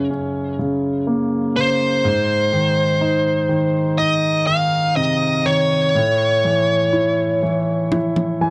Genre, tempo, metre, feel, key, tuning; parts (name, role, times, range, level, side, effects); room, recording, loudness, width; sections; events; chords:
pop ballad; 61 BPM; 4/4; straight; A4 = 443 Hz
clear concert grand piano; accompaniment; 0.0-8.5 s; Gb2 to Ab5; -22 LUFS; equal
bluesy overdriven lead guitar; melody; 1.6-8.5 s; C5 to F5; -20 LUFS; equal; distortion
toms; drums; 7.9-8.4 s; -26 LUFS; equal
small room ambience; -18 LUFS; mono
0.0-8.5 A section
grand piano fill 7.9-8.5; drum fill 7.9-8.5
0.0 Gb; 2.0 Ab; 5.9 A